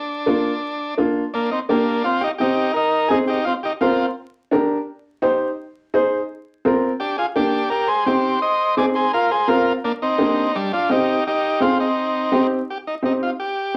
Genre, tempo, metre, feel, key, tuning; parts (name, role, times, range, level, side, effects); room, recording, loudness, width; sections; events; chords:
latin; 169 BPM; 4/4; straight; C minor; A4 = 440 Hz
overdriven combo organ; melody; 0.0-4.1, 7.0-13.8 s; G3 to Eb5; -22 LUFS; equal
warm upright piano; accompaniment; 0.3-13.8 s; Bb3 to C5; -22 LUFS; equal
wet small room reverb, RT60 0.5 s; vinyl crackle; -20 LUFS; mono
0.0-1.3 A section; 1.3-12.7 B section; 12.7-13.8 C section
0.0 Bb; 1.3 Gm; 2.0 Cm; 2.8 Ab; 3.5 Bbsus2; 4.2 Gm; 4.9 Cm; 5.6 Ab; 6.3 Bbsus2; 7.0 Gm; 7.7 Cm; 8.4 Ab; 9.1 Bbsus2; 9.8 Gm; 10.6 Cm; 11.3 Ab; 12.0 Cm